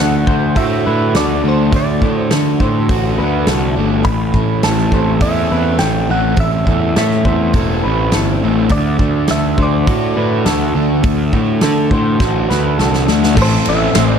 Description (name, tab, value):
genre	rock, shoegaze and dream pop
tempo	103 BPM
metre	4/4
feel	straight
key	unclear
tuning	A4 = 441 Hz
part	direct-recorded clean electric guitar	melody	0.0-14.2 s	C5 to B5	-21 LUFS	right 1 dB	analog chorus, slapback echo
part	electric guitar through a small old amp	arpeggios	0.0-14.2 s	A4 to C5	-24 LUFS	right 1 dB	lush chorus, slapback echo
part	overdriven semi-hollow guitar	riff	0.0-14.2 s	A2 to A4	-20 LUFS	left 13 dB	analog chorus
part	raw garage guitar	riff	0.0-14.2 s	A2 to F#4	-20 LUFS	right 13 dB	overdrive, reverse reverb
part	fuzz picked electric bass	bass	0.0-14.2 s	E1 to D3	-17 LUFS	equal	overdrive
part	big rock drum kit	drums	0.3-14.1 s	crash cymbal, hi-hat, kick drum, ride cymbal, snare drum	-19 LUFS	equal	none
part	overdriven semi-hollow guitar	riff	13.4-14.2 s	A2 to E4	-18 LUFS	equal	none
room	small room ambience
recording	dark, warm production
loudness	-12 LUFS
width	side -7 dB against mid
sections	0.0-13.4 A section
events	drum fill 12.2-13.4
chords	0.0 D; 4.1 Am; 8.7 D; 13.4 Am